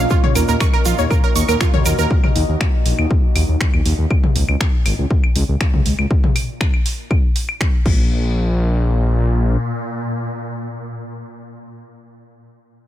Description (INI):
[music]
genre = melodic techno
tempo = 120 BPM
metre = 4/4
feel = straight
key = unclear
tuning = A4 = 441 Hz
[part]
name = deep dark ambient pad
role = sustained chords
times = 0.0-4.1 s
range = Bb3 to Eb5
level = -27 LUFS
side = equal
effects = chorus, built-in reverb, sidechain pumping
[part]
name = analog pluck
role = arpeggios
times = 0.0-2.0 s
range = F4 to Db6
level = -21 LUFS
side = right 4 dB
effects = chorus, sidechain pumping, tape echo
[part]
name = swelling detuned saw bass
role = bass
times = 0.0-9.6 s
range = Ab1 to Eb2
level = -17 LUFS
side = equal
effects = sidechain pumping
[part]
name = swarming drone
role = drone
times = 0.0-11.2 s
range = Bb2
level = -28 LUFS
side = left 1 dB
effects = built-in reverb, sidechain pumping
[part]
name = electronic kick drum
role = drums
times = 0.1-8.0 s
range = none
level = -16 LUFS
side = left 1 dB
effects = none
[part]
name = tube shaker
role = percussion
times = 0.1-2.1 s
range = none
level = -28 LUFS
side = right 4 dB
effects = none
[part]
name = techno drum kit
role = drums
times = 0.2-8.0 s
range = claves, crash cymbal, finger snaps, hi-hat, toms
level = -24 LUFS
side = left 2 dB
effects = none
[sound]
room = little or no reverb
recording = none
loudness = -15 LUFS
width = side -13 dB against mid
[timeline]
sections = 0.0-8.1 A section; 8.1-12.1 B section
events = drop 0.0-8.1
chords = 0.1 Ebm; 4.1 Db5; 7.9 N.C.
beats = | 0.11 0.61 1.11 1.61 | 2.11 2.61 3.11 3.61 | 4.11 4.61 5.11 5.61 | 6.11 6.61 7.11 7.61 | 8.11 8.61 9.11 9.61 | 10.11 10.61 11.11